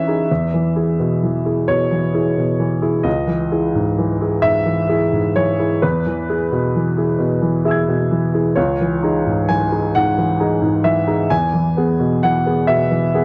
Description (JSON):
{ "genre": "neoclassical minimalist piano", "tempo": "44 BPM (dotted quarters)", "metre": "6/8", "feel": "rubato", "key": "unclear", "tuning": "A4 = 440 Hz", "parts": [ { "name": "clear upright piano", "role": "solo", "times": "0.0-13.2 s", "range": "C#2 to G#6", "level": "-18 LUFS", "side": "equal", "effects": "none" } ], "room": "light reverb, small room reverb", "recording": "dry, close 1970s-style studio recording", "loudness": "-18 LUFS", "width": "mono", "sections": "0.0-13.2 A section", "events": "none", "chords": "0.3 E; 3.1 C#madd9; 5.8 E; 8.6 C#madd9; 11.3 E", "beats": "| 0.29 1.68 | 3.06 4.45 | 5.83 7.19 | 8.56 9.94 | 11.30 12.68" }